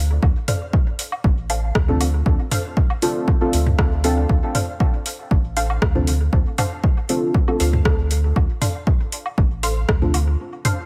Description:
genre	dub techno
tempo	118 BPM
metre	4/4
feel	straight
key	D minor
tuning	A4 = 440 Hz
part	soft dub sub bass	bass	0.0-10.4 s	A1 to D2	-22 LUFS	equal	sidechain pumping
part	electronic kick drum	drums	0.2-10.0 s	none	-21 LUFS	equal	none
part	electronic woodblock and toms	percussion	0.2-10.8 s	none	-28 LUFS	equal	sidechain pumping on perc, sidechain pumping on toms, dub echo
part	filtered dub chord stab	riff	0.5-10.8 s	D4 to F5	-31 LUFS	equal	phaser, analog chorus, vintage 12-bit sampler grit, sidechain pumping, dub echo
part	deep house drum kit	drums	0.5-10.8 s	hi-hat, rim click	-29 LUFS	equal	overdrive, dub echo
part	deep mellow chord stab	stabs	1.9-10.2 s	C4 to A4	-27 LUFS	equal	chorus, phaser, sidechain pumping, dub echo
room	light reverb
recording	none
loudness	-20 LUFS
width	mono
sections	0.0-10.9 A section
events	break 10.4-10.9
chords	0.0 Dm7

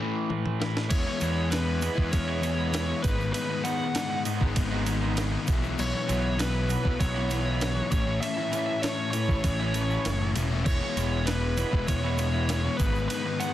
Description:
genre	indie rock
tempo	98 BPM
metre	4/4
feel	straight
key	E major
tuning	A4 = 440 Hz
part	crunchy overdriven guitar	riff	0.0-13.5 s	G#2 to E4	-31 LUFS	left 6 dB	none
part	raw garage guitar	riff	0.0-13.5 s	D#3 to E4	-36 LUFS	right 5 dB	overdrive, wide subtle chorus, tape echo
part	breakbeat sampler-style drum kit	drums	0.3-13.5 s	crash cymbal, kick drum, ride cymbal, snare drum, toms	-31 LUFS	right 1 dB	none
part	biting lead guitar	melody	0.9-13.5 s	B4 to F#5	-32 LUFS	right 1 dB	overdrive, tape echo
part	combo organ	sustained chords	0.9-13.5 s	D#4 to A5	-44 LUFS	right 2 dB	none
part	fuzz picked electric bass	bass	0.9-13.1 s	E1 to E2	-29 LUFS	right 1 dB	overdrive
part	tube shaker	percussion	0.9-13.5 s	none	-45 LUFS	right 11 dB	none
room	light reverb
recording	dense, heavily limited modern master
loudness	-24 LUFS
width	side -13 dB against mid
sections	0.9-13.5 A section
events	break 0.0-0.9; drum fill 0.3-0.9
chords	0.0 A; 0.9 E; 3.0 G#m7; 5.5 Bsus4; 7.9 A; 10.7 E; 12.8 G#m7

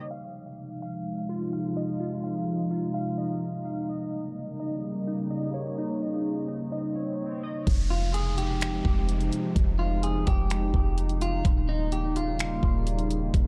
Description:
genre	hip hop, atmospheric cloud-rap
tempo	127 BPM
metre	4/4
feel	half-time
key	F minor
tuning	A4 = 436 Hz
part	dark analog pad	sustained chords	0.0-13.5 s	C3 to Eb4	-33 LUFS	equal	chorus, phaser, sidechain pumping
part	glassy digital keys	arpeggios	0.0-7.7 s	Eb4 to F5	-39 LUFS	equal	chorus, tape echo
part	swell and downlifter	sound effects	6.7-11.4 s	none	-46 LUFS	equal	none
part	soft 808-style bass	bass	7.7-13.5 s	Eb1 to F1	-29 LUFS	equal	none
part	smooth R&B drum kit	drums	7.7-13.4 s	finger snaps, hi-hat, kick drum	-29 LUFS	equal	none
part	electric guitar at the edge of break-up	melody	7.9-13.3 s	Eb4 to Ab4	-36 LUFS	equal	tape echo
room	light reverb, digital ambience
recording	dark, warm production, low-pass filter, lossy compression artefacts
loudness	-28 LUFS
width	mono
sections	0.1-7.7 A section; 7.7-13.5 B section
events	filter sweep 0.1-7.7; swell 6.7-7.7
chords	0.1 Fm7; 3.9 Eb7; 7.7 Fm7; 11.4 Eb7

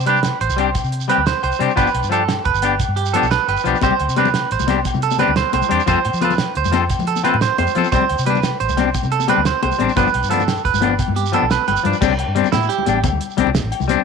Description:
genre	highlife guitar band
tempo	117 BPM (dotted quarters)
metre	12/8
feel	straight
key	unclear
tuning	A4 = 441 Hz
part	clean electric guitar	arpeggios	0.0-13.0 s	E4 to C5	-19 LUFS	right 11 dB	spring reverb, slapback echo
part	vintage muted fingered electric bass	bass	0.0-13.9 s	F1 to F3	-23 LUFS	equal	none
part	shekere	percussion	0.0-13.9 s	none	-30 LUFS	right 7 dB	none
part	clean electric guitar	accompaniment	0.1-14.0 s	F3 to A4	-20 LUFS	left 13 dB	none
part	cloth-damped thuddy drum kit	drums	0.1-14.0 s	crash cymbal, hi-hat, kick drum, snare drum	-24 LUFS	right 3 dB	none
part	agogo bells	percussion	0.2-13.9 s	none	-28 LUFS	left 13 dB	none
part	congas	percussion	3.8-14.0 s	none	-25 LUFS	left 11 dB	none
room	light reverb, small room reverb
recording	1960s-style stereo with parts hard left and right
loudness	-15 LUFS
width	side -5 dB against mid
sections	0.0-12.0 A section; 12.0-14.0 B section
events	drum fill 11.2-12.0; clean electric guitar solo 12.0-14.0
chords	0.0 Csus2; 1.8 G7; 3.8 Csus2; 5.9 F; 7.9 Csus2; 10.0 G7; 12.0 Csus2

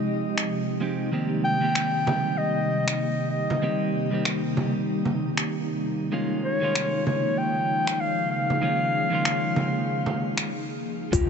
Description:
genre	organic downtempo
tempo	96 BPM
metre	4/4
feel	swing 58% on 16ths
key	unclear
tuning	A4 = 440 Hz
part	warm clarinet	melody	0.0-10.5 s	Db5 to G5	-28 LUFS	left 2 dB	ping-pong delay, shimmer reverb
part	clean electric guitar	accompaniment	0.0-11.3 s	Eb3 to G4	-29 LUFS	right 2 dB	sidechain pumping, ping-pong delay, shimmer reverb
part	ethereal airy pad	sustained chords	0.0-10.5 s	C3 to Ab4	-28 LUFS	equal	ensemble chorus, built-in reverb, sidechain pumping, shimmer reverb
part	organic electronic drum kit	drums	0.4-11.3 s	cabasa, finger snaps, hi-hat	-29 LUFS	left 1 dB	overdrive
part	frame drum	percussion	2.1-10.2 s	none	-30 LUFS	right 3 dB	none
part	steel tongue drum	arpeggios	11.1-11.3 s	F4	-24 LUFS	left 12 dB	none
part	upright bass	bass	11.1-11.3 s	Eb2	-26 LUFS	equal	sidechain pumping
part	electronic kick drum	drums	11.1-11.3 s	none	-24 LUFS	equal	none
part	impact	sound effects	11.1-11.3 s	none	-28 LUFS	equal	none
room	moderate huge ambient reverb, RT60 4.0 s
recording	nothing above 8.0 kHz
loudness	-23 LUFS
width	side -6 dB against mid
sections	0.0-11.1 A section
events	filter sweep on ambient pad 0.0-11.1; stop 10.5-11.1; impact 11.1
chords	0.0 Fm9; 1.1 Cm7; 6.1 Db69

